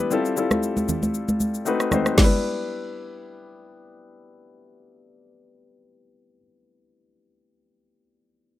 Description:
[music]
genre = amapiano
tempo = 116 BPM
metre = 4/4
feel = swing 55% on 16ths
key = E minor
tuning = A4 = 440 Hz
[part]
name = warm grand piano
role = accompaniment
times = 0.0-8.6 s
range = G3 to C5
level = -25 LUFS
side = left 4 dB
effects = low-pass filter
[part]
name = afro-pop drum kit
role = drums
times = 0.1-2.3 s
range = crash cymbal, kick drum, rim click, shaker, snare drum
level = -22 LUFS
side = equal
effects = none
[part]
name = congas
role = percussion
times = 0.5-2.4 s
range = none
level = -25 LUFS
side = right 1 dB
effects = none
[sound]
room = little or no reverb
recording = rough home demo mix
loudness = -20 LUFS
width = side -14 dB against mid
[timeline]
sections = 0.0-2.2 A section; 2.2-6.3 B section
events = none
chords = 0.1 Fmaj9; 1.7 B7b9; 2.2 Em7

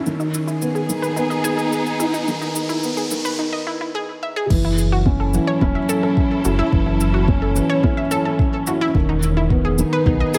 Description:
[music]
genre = piano and strings electronica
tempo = 108 BPM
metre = 4/4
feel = straight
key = F# dorian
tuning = A4 = 442 Hz
[part]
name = warm studio string section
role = sustained chords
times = 0.0-10.4 s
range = F#3 to A4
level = -30 LUFS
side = equal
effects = sidechain pumping
[part]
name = felt-muted upright piano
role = riff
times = 0.0-10.4 s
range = D#3 to E4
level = -23 LUFS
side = equal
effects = digital delay
[part]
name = riser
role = sound effects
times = 0.0-3.4 s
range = none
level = -34 LUFS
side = equal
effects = none
[part]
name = electronic shaker and crash cymbal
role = drums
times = 0.1-10.4 s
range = none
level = -33 LUFS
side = equal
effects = overdrive
[part]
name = analog pluck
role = arpeggios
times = 0.2-10.4 s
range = D#4 to E5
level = -27 LUFS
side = equal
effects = chorus, sidechain pumping, digital delay
[part]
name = round analog bass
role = bass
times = 4.5-10.2 s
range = E1 to B1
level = -23 LUFS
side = equal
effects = sidechain pumping
[part]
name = electronic kick drum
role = drums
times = 4.5-10.2 s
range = none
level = -22 LUFS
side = equal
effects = overdrive
[sound]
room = moderate recital hall reverb, RT60 1.4 s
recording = high-pass filter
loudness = -19 LUFS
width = mono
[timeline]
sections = 0.0-4.5 A section; 4.5-10.4 B section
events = build-up 0.0-4.5; riser 0.0-3.4; filter sweep on synth arpeggio sound 0.0-4.5; filter sweep 0.0-4.5; break 3.4-4.5; drop 4.5-10.4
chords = 0.1 Emaj7; 4.5 F#m7; 8.9 Emaj7

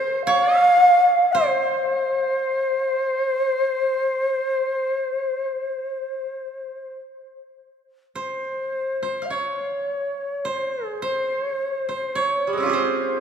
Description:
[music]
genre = japanese traditional, Japanese chamber music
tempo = 50-55 BPM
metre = 4/4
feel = rubato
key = C miyako bushi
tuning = A4 = 445 Hz
[part]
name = breathy shakuhachi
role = melody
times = 0.0-13.2 s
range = C5 to F5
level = -21 LUFS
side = equal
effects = none
[part]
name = koto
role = second line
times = 0.0-13.2 s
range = G3 to F5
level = -26 LUFS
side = right 4 dB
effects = none
[sound]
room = wet church reverb, RT60 3.2 s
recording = minimal, uncompressed stereo recording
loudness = -20 LUFS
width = side -8 dB against mid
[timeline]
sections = 0.0-8.2 A section; 8.2-13.2 B section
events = none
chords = none

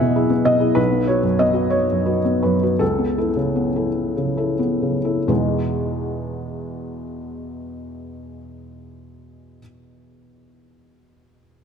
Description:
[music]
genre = neoclassical minimalist piano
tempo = 44-68 BPM (dotted quarters)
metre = 6/8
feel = rubato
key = E major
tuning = A4 = 440 Hz
[part]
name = felt-muted upright piano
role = solo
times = 0.0-11.6 s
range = B1 to G#5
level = -18 LUFS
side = equal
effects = none
[sound]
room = moderate concert hall reverb, RT60 2.2 s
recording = none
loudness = -17 LUFS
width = side -7 dB against mid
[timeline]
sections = 0.0-5.3 A section; 5.3-10.7 B section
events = slowing down 0.0-5.3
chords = 0.0 Emaj7; 0.8 Bsus2; 2.8 Aadd9/C#; 5.3 Emaj7

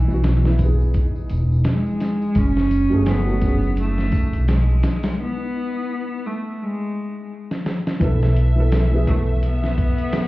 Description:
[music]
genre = trip hop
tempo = 85 BPM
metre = 4/4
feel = swing 58% on 16ths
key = unclear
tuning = A4 = 441 Hz
[part]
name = clear cello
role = melody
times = 0.0-10.3 s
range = E3 to C#4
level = -24 LUFS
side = equal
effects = tape echo
[part]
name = upright bass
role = bass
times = 0.0-10.1 s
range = E1 to B1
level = -19 LUFS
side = equal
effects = none
[part]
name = flickering grainy texture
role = texture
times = 0.0-5.2 s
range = D#4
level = -38 LUFS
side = right 1 dB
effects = built-in reverb
[part]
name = felt-muted upright piano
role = accompaniment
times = 0.1-10.3 s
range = E3 to A4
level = -26 LUFS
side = equal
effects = harmonic tremolo
[part]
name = tambourine and triangle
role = percussion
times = 0.1-10.3 s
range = none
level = -58 LUFS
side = right 1 dB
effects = none
[part]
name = dusty soul sampler-style drum kit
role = drums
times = 0.2-10.3 s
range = hi-hat, kick drum, snare drum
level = -22 LUFS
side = equal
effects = small room ambience
[part]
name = bright studio violin section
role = sustained chords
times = 8.0-10.3 s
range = E5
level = -32 LUFS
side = right 1 dB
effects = none
[sound]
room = studio reverb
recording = heard muffled through a wall, club reverb, vinyl crackle, EQ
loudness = -17 LUFS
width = side -18 dB against mid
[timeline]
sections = 0.0-8.0 A section; 8.0-10.3 B section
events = break 5.2-8.0; drum fill 7.5-8.0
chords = 0.0 Bsus4; 1.0 E; 2.4 F#madd9; 5.2 N.C.; 8.0 B7sus4

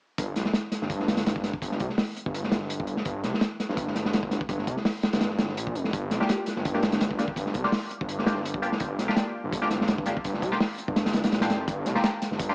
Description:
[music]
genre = drum and bass, jungle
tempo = 167 BPM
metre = 4/4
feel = swing 54% on 16ths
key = G minor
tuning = A4 = 441 Hz
[part]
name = detuned saw bass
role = bass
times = 0.2-12.5 s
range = F1 to C2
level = -30 LUFS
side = equal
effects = none
[part]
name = crunchy breakbeat drum kit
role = drums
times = 0.2-12.5 s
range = hi-hat, kick drum, snare drum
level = -26 LUFS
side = equal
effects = cassette tape
[part]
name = band-passed chord stab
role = stabs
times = 6.2-12.5 s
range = Bb3 to G4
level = -30 LUFS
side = left 1 dB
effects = phaser, wide subtle chorus, cassette tape, dub echo
[part]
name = breakbeat sampler-style drum kit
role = drums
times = 11.7-12.5 s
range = hi-hat, snare drum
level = -40 LUFS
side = equal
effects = high-pass filter on hats, cassette tape, high-pass filter on snare
[sound]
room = light reverb, small room reverb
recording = home recording on cassette, small speaker sound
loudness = -24 LUFS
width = side -34 dB against mid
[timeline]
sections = 0.2-12.5 A section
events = none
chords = 0.2 Gm7

